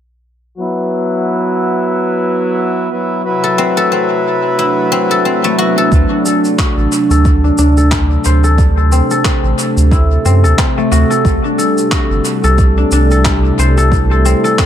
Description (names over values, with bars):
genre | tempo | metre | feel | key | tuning
organic downtempo | 90 BPM | 4/4 | swing 56% on 16ths | D mixolydian | A4 = 439 Hz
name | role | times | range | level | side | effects
hand-pumped harmonium | accompaniment | 0.6-5.9 s | F#3 to B4 | -14 LUFS | equal | vintage 12-bit sampler grit, sidechain pumping, low-pass filter, analog delay
warm analog pad | sustained chords | 3.2-14.7 s | C3 to A4 | -17 LUFS | right 2 dB | chorus, sidechain pumping
guzheng | arpeggios | 3.4-14.7 s | A3 to C5 | -15 LUFS | left 3 dB | low-pass filter, dub echo
warm sub bass | bass | 5.9-14.3 s | G1 to F#2 | -11 LUFS | equal | sidechain pumping
electronic cabasa and handclaps | drums | 5.9-14.7 s | none | -20 LUFS | equal | analog delay
electronic kick drum | drums | 5.9-14.7 s | none | -14 LUFS | equal | overdrive
room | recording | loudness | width
light reverb, digital ambience | echo-heavy mix, faint mains hum | -10 LUFS | side -10 dB against mid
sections
0.6-5.9 A section; 5.9-14.7 B section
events
filter sweep on harmonium 0.6-5.9; filter sweep on guzheng 5.9-14.7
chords
0.6 D7; 11.3 C6